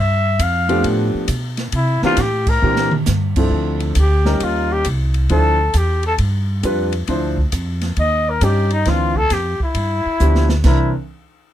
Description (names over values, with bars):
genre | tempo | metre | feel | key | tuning
jazz, small-group swing and bop | 135 BPM | 4/4 | swing 66% on 8ths | C mixolydian | A4 = 440 Hz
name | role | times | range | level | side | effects
growling trumpet | melody | 0.0-10.9 s | Eb4 to F5 | -19 LUFS | left 2 dB | none
upright bass | bass | 0.0-10.9 s | C2 to C3 | -18 LUFS | equal | none
open jazz drum kit | drums | 0.4-10.8 s | crash cymbal, hi-hat, kick drum, ride cymbal, snare drum, toms | -24 LUFS | equal | none
warm grand piano | accompaniment | 0.7-10.9 s | E3 to C5 | -20 LUFS | equal | none
room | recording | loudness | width
little or no reverb | close, detailed microphones | -15 LUFS | side -12 dB against mid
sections
0.0-3.5 A section; 3.5-10.6 B section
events
band accent 2.4; drum fill 2.6-3.1, 10.2-10.6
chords
0.0 G9; 1.7 C9; 3.5 Dm9; 4.4 Eb7; 5.3 Dm9; 6.2 G7; 7.1 Dm9; 8.0 Eb7; 8.9 Dm9; 9.8 G7; 10.6 C9